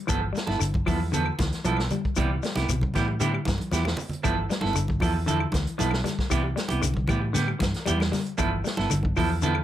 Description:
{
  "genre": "afrobeat",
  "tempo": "116 BPM",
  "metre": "4/4",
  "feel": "straight",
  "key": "G mixolydian",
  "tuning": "A4 = 440 Hz",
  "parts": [
    { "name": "semi-hollow electric guitar", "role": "arpeggios", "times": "0.0-9.6 s", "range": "B2 to G3", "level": "-30 LUFS", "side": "left 4 dB", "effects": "phaser" },
    { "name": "semi-hollow electric guitar", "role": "stabs", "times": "0.1-9.6 s", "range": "F3 to A4", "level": "-28 LUFS", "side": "right 4 dB", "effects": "none" },
    { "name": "hollow-body short-scale fingered electric bass", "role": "bass", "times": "0.1-9.6 s", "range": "G1 to A2", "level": "-28 LUFS", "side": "equal", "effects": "none" },
    { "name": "vintage drum kit", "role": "drums", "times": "0.1-9.6 s", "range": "hi-hat, kick drum, snare drum", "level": "-30 LUFS", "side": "equal", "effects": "none" },
    { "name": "claves", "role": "percussion", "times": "0.1-9.6 s", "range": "none", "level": "-36 LUFS", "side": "left 9 dB", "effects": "none" },
    { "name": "congas", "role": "percussion", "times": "0.1-9.6 s", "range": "none", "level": "-34 LUFS", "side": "right 2 dB", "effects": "none" },
    { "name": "shekere", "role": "percussion", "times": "0.1-9.6 s", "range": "none", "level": "-33 LUFS", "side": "left 4 dB", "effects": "none" }
  ],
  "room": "moderate club reverb, RT60 0.5 s",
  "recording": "none",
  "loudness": "-23 LUFS",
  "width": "side -12 dB against mid",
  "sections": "0.0-9.6 A section",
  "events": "drum fill 3.6-4.2",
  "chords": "0.1 G13; 2.2 Cmaj7; 4.2 G13; 6.3 Cmaj7; 8.4 G13",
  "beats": "| 0.09 0.61 1.13 1.65 | 2.17 2.69 3.21 3.73 | 4.25 4.77 5.29 5.81 | 6.33 6.84 7.36 7.88 | 8.40 8.92 9.44"
}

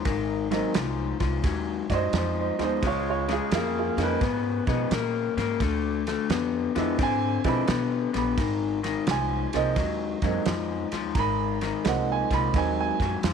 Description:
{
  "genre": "electric blues shuffle",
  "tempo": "86 BPM",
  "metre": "4/4",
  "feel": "swing 66% on 8ths",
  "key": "unclear",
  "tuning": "A4 = 437 Hz",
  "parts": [
    { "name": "electric guitar through a small old amp", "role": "riff", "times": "0.0-13.3 s", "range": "Ab2 to C4", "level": "-27 LUFS", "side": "left 10 dB", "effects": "none" },
    { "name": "upright bass", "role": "bass", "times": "0.1-13.3 s", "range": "Ab1 to Cb3", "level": "-31 LUFS", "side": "equal", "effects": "none" },
    { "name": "warm soul drum kit", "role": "drums", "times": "0.1-13.3 s", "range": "kick drum, ride cymbal, snare drum", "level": "-31 LUFS", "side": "right 3 dB", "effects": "none" },
    { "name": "warm upright piano", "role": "accompaniment", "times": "0.5-13.2 s", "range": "F3 to B5", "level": "-28 LUFS", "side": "right 10 dB", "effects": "none" }
  ],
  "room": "light reverb, small room ambience",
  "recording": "1960s-style stereo with parts hard left and right",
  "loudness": "-24 LUFS",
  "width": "side -6 dB against mid",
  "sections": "0.0-13.3 A section",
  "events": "none",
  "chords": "0.0 Ab7; 2.8 Db9; 5.6 Ddim7; 8.4 Ab9",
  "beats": "| 0.06 0.76 1.45 2.14 | 2.84 3.53 4.22 4.92 | 5.61 6.30 7.00 7.69 | 8.38 9.08 9.77 10.47 | 11.16 11.85 12.55 13.24"
}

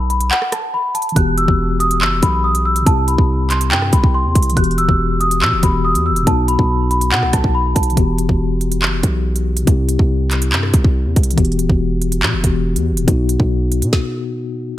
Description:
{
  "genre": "hip hop, drill",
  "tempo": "141 BPM",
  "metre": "4/4",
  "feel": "half-time",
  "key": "E harmonic minor",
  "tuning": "A4 = 440 Hz",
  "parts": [
    { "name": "celesta", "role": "melody", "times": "0.0-7.9 s", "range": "F#5 to F#6", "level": "-18 LUFS", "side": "equal", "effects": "ping-pong delay" },
    { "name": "hard-hitting 808-style bass", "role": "bass", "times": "0.0-13.9 s", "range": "D#1 to B2", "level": "-18 LUFS", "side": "equal", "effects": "none" },
    { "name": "drill drum kit", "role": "drums", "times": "0.1-14.0 s", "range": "handclaps, hi-hat, kick drum, rim click, snare drum", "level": "-17 LUFS", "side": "equal", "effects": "gated reverb" },
    { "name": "mellow tine electric piano", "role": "accompaniment", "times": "1.1-14.8 s", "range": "B2 to G4", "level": "-20 LUFS", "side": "left 3 dB", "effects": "medium stereo tremolo" }
  ],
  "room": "light reverb, digital ambience",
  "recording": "bright 1980s-style digital production",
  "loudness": "-13 LUFS",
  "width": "side -14 dB against mid",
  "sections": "0.0-14.8 A section",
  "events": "kick muted 0.3-1.2; stop 13.9-14.8",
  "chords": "0.0 F#madd11/B (rootless); 1.2 Emadd9; 2.9 C; 4.6 Emadd9; 6.3 B; 8.0 Emadd9; 9.7 C; 11.4 Emadd9; 13.1 B",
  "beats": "0.31 0.74 | 1.16 1.59 2.01 2.44 | 2.87 3.29 3.72 4.14 | 4.57 4.99 5.42 5.84 | 6.27 6.70 7.12 7.55 | 7.97 8.40 8.82 9.25 | 9.67 10.10 10.53 10.95 | 11.38 11.80 12.23 12.65 | 13.08 13.50 13.93 14.35"
}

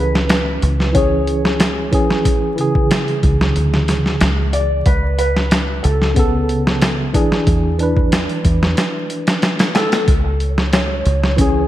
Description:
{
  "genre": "trip hop",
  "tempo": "92 BPM",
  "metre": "4/4",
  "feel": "straight",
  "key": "C# phrygian",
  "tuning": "A4 = 438 Hz",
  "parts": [
    { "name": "felt-muted upright piano", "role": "melody", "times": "0.0-10.1 s", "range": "A4 to D5", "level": "-22 LUFS", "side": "left 1 dB", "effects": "lush chorus, tape echo" },
    { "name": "tine electric piano", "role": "accompaniment", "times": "0.0-11.7 s", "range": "C#3 to B4", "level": "-19 LUFS", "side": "right 1 dB", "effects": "medium stereo tremolo, harmonic tremolo, low-pass filter, tape echo" },
    { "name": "deep dub fingered electric bass", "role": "bass", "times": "0.0-11.7 s", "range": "C#2 to E2", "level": "-18 LUFS", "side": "equal", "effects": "none" },
    { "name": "boom bap sampler-style drum kit", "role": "drums", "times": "0.2-11.5 s", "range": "hi-hat, kick drum, snare drum", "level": "-17 LUFS", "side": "equal", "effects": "gated reverb" },
    { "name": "wind-like tuned noise texture", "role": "texture", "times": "10.4-11.7 s", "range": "C#5", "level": "-29 LUFS", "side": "right 5 dB", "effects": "built-in reverb, ensemble chorus" },
    { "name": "large celesta", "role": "arpeggios", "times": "10.7-11.7 s", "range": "C#4 to C#5", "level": "-22 LUFS", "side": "left 4 dB", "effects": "tape echo" }
  ],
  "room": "light reverb",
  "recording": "bright 1980s-style digital production, vinyl crackle",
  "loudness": "-14 LUFS",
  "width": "side -13 dB against mid",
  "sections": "0.0-11.7 A section",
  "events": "none",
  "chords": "0.0 C#m; 4.9 Aadd9/C#; 7.5 E7(no3); 10.1 C#m",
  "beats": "0.30 0.95 1.60 | 2.25 2.90 3.56 4.21 | 4.86 5.51 6.17 6.82 | 7.47 8.12 8.77 9.43 | 10.08 10.73 11.38"
}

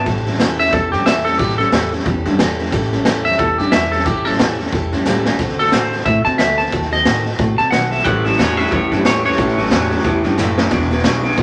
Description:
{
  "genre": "rockabilly",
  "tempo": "180 BPM",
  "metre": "4/4",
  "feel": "swing 60% on 8ths",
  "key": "A mixolydian",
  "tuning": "A4 = 440 Hz",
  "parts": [
    { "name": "semi-hollow electric guitar", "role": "melody", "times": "0.0-10.2 s", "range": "G4 to A5", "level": "-20 LUFS", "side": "equal", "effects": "warbly pitch drift" },
    { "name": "picked steel-string acoustic guitar", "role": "accompaniment", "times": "0.0-11.4 s", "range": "A2 to B4", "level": "-24 LUFS", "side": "equal", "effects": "none" },
    { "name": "electric guitar through a small old amp", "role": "riff", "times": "0.0-0.1, 8.1-11.4 s", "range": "E2 to F#3", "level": "-21 LUFS", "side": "equal", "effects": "none" },
    { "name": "upright bass", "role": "bass", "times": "0.0-11.4 s", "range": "E1 to C3", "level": "-25 LUFS", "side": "equal", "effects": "none" },
    { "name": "raw garage drum kit", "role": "drums", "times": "0.1-11.4 s", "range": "hi-hat, kick drum, snare drum", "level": "-21 LUFS", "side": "equal", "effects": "none" }
  ],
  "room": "moderate large studio reverb, RT60 1.3 s",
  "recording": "none",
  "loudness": "-16 LUFS",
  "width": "mono",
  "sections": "0.1-11.4 A section",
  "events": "drum fill 5.1-5.4, 10.4-10.7",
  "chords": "0.1 A7; 5.4 D7; 6.7 D#dim7; 8.0 A7; 10.7 E7",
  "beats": "| 0.06 0.40 0.73 1.06 | 1.39 1.73 2.06 2.39 | 2.73 3.06 3.39 3.72 | 4.06 4.39 4.72 5.05 | 5.39 5.72 6.05 6.39 | 6.72 7.05 7.38 7.72 | 8.05 8.38 8.71 9.05 | 9.38 9.71 10.05 10.38 | 10.71 11.04 11.38"
}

